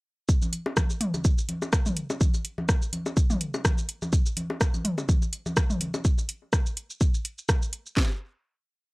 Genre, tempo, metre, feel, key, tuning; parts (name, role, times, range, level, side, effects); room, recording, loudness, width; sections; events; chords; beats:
techno; 125 BPM; 4/4; swing 56% on 16ths
house drum kit; drums; 0.3-8.1 s; handclaps, kick drum, snare drum; -23 LUFS; equal
house drum kit; drums; 0.3-7.9 s; hi-hat, rim click, shaker; -30 LUFS; equal
electronic congas, claves, bongos and toms; percussion; 0.4-6.0 s; -30 LUFS; left 1 dB; overdrive
little or no reverb; dry, gritty hardware recording; -24 LUFS; side -26 dB against mid
0.3-8.0 drop; 8.0-8.9 final hit
drop 0.3-8.0
| 0.29 0.77 1.25 1.73 | 2.21 2.69 3.17 3.65 | 4.13 4.61 5.09 5.57 | 6.05 6.53 7.01 7.49 | 7.97